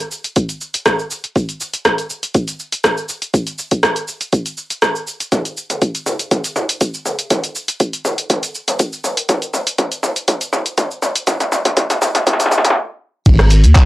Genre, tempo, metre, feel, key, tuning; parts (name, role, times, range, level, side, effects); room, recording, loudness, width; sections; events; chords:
afro house; 121 BPM; 4/4; straight; A4 = 441 Hz
deep house drum kit; drums; 0.0-13.9 s; cabasa, crash cymbal, handclaps, hi-hat, rim click, toms; -17 LUFS; equal; high-pass filter on perc, cassette tape, high-pass filter on hats, high-pass filter on snare, high-pass filter on toms, high-pass filter on cymbals, high-pass filter on room
electronic kick drum; drums; 0.4-13.9 s; -15 LUFS; equal; high-pass filter on kick, cassette tape
round analog bass; bass; 13.3-13.7 s; G#1 to D#2; -8 LUFS; equal; sidechain pumping
light reverb; home recording on cassette, high-pass filter; -15 LUFS; side -18 dB against mid
0.0-13.3 A section
build-up 0.0-13.3; drum fill 5.3-12.8; stop 12.8-13.3